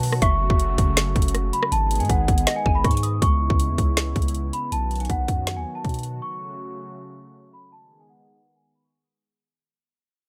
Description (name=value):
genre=hip hop, trap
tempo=160 BPM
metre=4/4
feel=half-time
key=C# minor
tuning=A4 = 439 Hz
part: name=large celesta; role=melody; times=0.0-9.2 s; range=F#5 to D#6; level=-30 LUFS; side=equal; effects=low-pass filter, delay
part: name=mallet-like synth pluck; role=second line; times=0.0-3.2 s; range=B4 to G#5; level=-33 LUFS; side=equal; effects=chorus, delay
part: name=warm analog pad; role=sustained chords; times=0.0-9.2 s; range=C#3 to G#4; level=-34 LUFS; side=equal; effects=subtle chorus, low-pass filter
part: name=long sustained 808-style bass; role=bass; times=0.0-6.2 s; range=F#1 to B2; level=-27 LUFS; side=equal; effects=none
part: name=trap drum kit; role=drums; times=0.0-6.1 s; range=hi-hat, kick drum, rim click, snare drum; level=-24 LUFS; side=equal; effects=none
room=little or no reverb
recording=none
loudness=-22 LUFS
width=mono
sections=0.0-3.2 A section; 3.2-9.2 B section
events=fade-out 3.2-9.2; filter sweep 3.2-9.2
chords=0.2 F#m; 1.7 G#m; 3.2 C#m7; 4.7 B; 6.2 F#m; 7.7 G#m